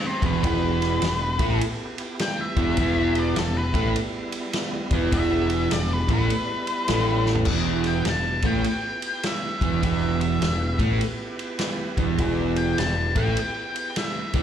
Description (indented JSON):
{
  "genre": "blues rock power trio and southern rock",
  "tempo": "102 BPM",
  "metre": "4/4",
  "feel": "swing 64% on 8ths",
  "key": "E minor",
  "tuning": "A4 = 445 Hz",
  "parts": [
    { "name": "octave-fuzz lead guitar", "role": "melody", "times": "0.0-14.4 s", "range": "G4 to A5", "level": "-29 LUFS", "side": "left 2 dB", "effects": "distortion, slapback echo" },
    { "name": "overdriven tonewheel organ", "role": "sustained chords", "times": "0.0-14.4 s", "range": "G3 to B4", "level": "-35 LUFS", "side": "right 2 dB", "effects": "slow rotary speaker, chorus vibrato" },
    { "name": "overdriven semi-hollow guitar", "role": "riff", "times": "0.2-14.4 s", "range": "E2 to A3", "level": "-25 LUFS", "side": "right 2 dB", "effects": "none" },
    { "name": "growling fingered electric bass", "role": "bass", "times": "0.2-14.4 s", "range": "E1 to A1", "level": "-26 LUFS", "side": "equal", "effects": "overdrive" },
    { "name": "vintage drum kit", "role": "drums", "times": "0.2-14.4 s", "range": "crash cymbal, kick drum, ride cymbal, snare drum, toms", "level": "-27 LUFS", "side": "equal", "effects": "none" }
  ],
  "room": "small room ambience",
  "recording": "live gig heard through the venue's PA, club reverb",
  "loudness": "-21 LUFS",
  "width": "side -9 dB against mid",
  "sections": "0.0-7.5 A section; 7.5-14.4 A section",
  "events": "lead electric guitar solo 0.0-14.4; drum fill 7.2",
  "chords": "0.0 Em"
}